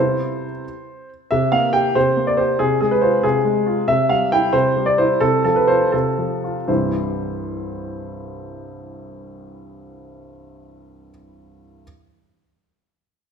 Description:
classical-period piano sonatina; 77-94 BPM (dotted quarters); 6/8; rubato; C major; A4 = 442 Hz
clear baby grand piano; solo; 0.0-11.8 s; C2 to G5; -17 LUFS; equal
moderate recital hall reverb, RT60 1.3 s; minimal, uncompressed stereo recording; -16 LUFS; side -6 dB against mid
0.0-1.3 A section; 1.3-6.7 B section; 6.7-9.6 C section
slowing down 3.2-6.7
0.0 C; 1.3 C5; 2.6 Fm/C; 3.9 C; 5.2 F/C; 6.7 C

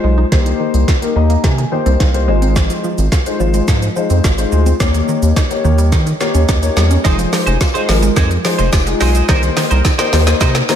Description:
dance-pop; 107 BPM; 4/4; straight; F minor; A4 = 440 Hz
dark grand piano; accompaniment; 0.0-10.8 s; Ab3 to Bb5; -18 LUFS; left 5 dB; lush chorus, sidechain pumping
wide unison pluck; arpeggios; 0.0-10.8 s; Eb3 to F4; -23 LUFS; right 3 dB; sidechain pumping, analog delay
round analog bass; bass; 0.0-10.6 s; F1 to Eb3; -14 LUFS; equal; sidechain pumping
smooth R&B drum kit; drums; 0.3-10.8 s; hi-hat, kick drum, shaker, snare drum; -16 LUFS; equal
twelve-string electric guitar; riff; 7.0-10.7 s; Eb4 to C5; -21 LUFS; right 5 dB; analog chorus
tambourine; percussion; 7.0-10.8 s; -35 LUFS; left 7 dB
light reverb, digital ambience; -11 LUFS; side -9 dB against mid
0.0-10.8 A section
build-up 0.0-10.8; drum fill 0.0-10.8; grand piano fill 0.9-2.6, 10.4-10.8
0.3 Cm7; 2.3 Ab6; 4.8 Eb7; 7.0 Fm7; 9.3 Cm7

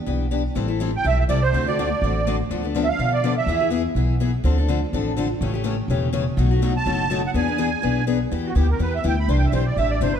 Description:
acoustic string swing (jazz manouche); 247 BPM; 4/4; swing 55% on 8ths; A minor; A4 = 440 Hz
picked steel-string acoustic guitar; accompaniment; 0.1-10.1 s; B2 to A4; -24 LUFS; left 5 dB
upright bass; bass; 0.1-10.2 s; E1 to B2; -22 LUFS; equal
musette accordion; melody; 1.0-3.7, 6.8-10.2 s; F#4 to C6; -24 LUFS; right 6 dB
moderate concert hall reverb, RT60 2.0 s; dark, warm production; -19 LUFS; side -8 dB against mid
0.6-8.3 A section; 8.3-10.2 B section
accordion solo 8.3-10.2
0.0 Em7; 0.6 Am7; 1.5 D7; 2.5 Bm7b5/D; 3.5 E; 4.4 Dm7; 5.4 A7; 6.4 B7; 7.4 E7; 8.3 Em; 9.3 Cadd9

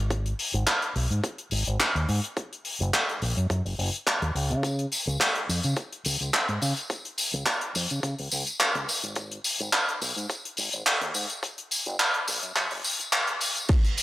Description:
nu-disco, nu disco; 106 BPM; 4/4; swing 53% on 16ths; A4 = 440 Hz
fingered electric bass with an envelope filter; bass; 0.0-13.4 s; Gb1 to Db3; -28 LUFS; equal; transformer saturation
electronic kick drum; drums; 0.1-13.8 s; -27 LUFS; equal; high-pass filter on kick, studio reverb
tight funk drum kit; drums; 0.1-14.0 s; crash cymbal, handclaps, hi-hat, ride cymbal, tambourine; -26 LUFS; equal; studio reverb
light reverb; dry, gritty hardware recording, high-pass filter; -24 LUFS; side -16 dB against mid
0.0-13.7 A section
build-up 0.0-13.7; filter sweep 0.0-13.7

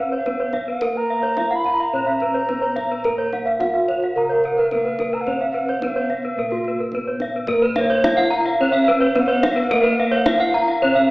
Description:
Balinese gamelan; 108 BPM; 4/4; straight; Bb pelog; A4 = 439 Hz
gamelan-type bronze metallophone; melody; 0.0-11.1 s; Bb3 to Bb4; -24 LUFS; equal
breathy mellow tenor recorder; second line; 0.0-11.1 s; Db5-47c to Cb6; -24 LUFS; right 1 dB
gamelan-type bronze metallophone; arpeggios; 0.0-11.0 s; Bb4 to Bb5; -22 LUFS; left 1 dB
gamelan-type bossed gongs; bass; 0.0-11.1 s; Bb1 to Bb4; -29 LUFS; right 1 dB
gamelan-type bronze metallophone; arpeggios; 0.1-11.1 s; Gb4-40c to Gb5-40c; -24 LUFS; right 1 dB
kendang; percussion; 0.3-10.7 s; -29 LUFS; equal
wet recital hall reverb, RT60 1.4 s; recorded in a church or concert hall, AM radio sound; -17 LUFS; side -21 dB against mid
0.0-11.1 A section

